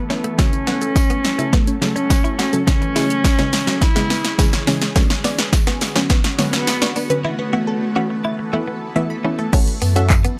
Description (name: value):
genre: dance-pop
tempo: 105 BPM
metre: 4/4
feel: straight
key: F# minor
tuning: A4 = 439 Hz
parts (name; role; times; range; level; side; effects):
- dark cello; melody; 0.0-8.9 s; G#3 to E4; -25 LUFS; equal; low-pass filter
- unison pluck; accompaniment; 0.0-10.4 s; C#3 to E5; -26 LUFS; equal; sidechain pumping, low-pass filter
- shimmering ambient pad; sustained chords; 0.0-10.4 s; D3 to A4; -31 LUFS; equal; chorus, built-in reverb, phaser, sidechain pumping, low-pass filter
- unison pluck; arpeggios; 0.0-9.5 s; C#3 to B6; -30 LUFS; equal; phaser, sidechain pumping, low-pass filter, tape echo
- direct-recorded clean electric guitar; riff; 0.1-10.4 s; F#3 to F#4; -28 LUFS; equal; analog chorus, low-pass filter
- punchy analog drum machine; drums; 0.1-10.4 s; crash cymbal, handclaps, hi-hat, kick drum, shaker, snare drum; -19 LUFS; equal; none
- tambourine; percussion; 0.4-10.2 s; none; -38 LUFS; equal; none
- sub bass with octave; bass; 9.8-10.3 s; F#2; -19 LUFS; equal; sidechain pumping
room: light reverb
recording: none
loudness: -18 LUFS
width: mono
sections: 0.0-9.5 A section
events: build-up 0.0-9.5; drum fill 0.0-7.2; break 7.2-9.5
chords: 0.4 F#m; 2.7 C#m; 5.0 Bmadd9/D; 7.2 Esus4; 9.5 F#m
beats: | 0.39 0.96 1.53 2.10 | 2.67 3.25 3.82 4.39 | 4.96 5.53 6.10 6.67 | 7.25 7.82 8.39 8.96 | 9.53 10.10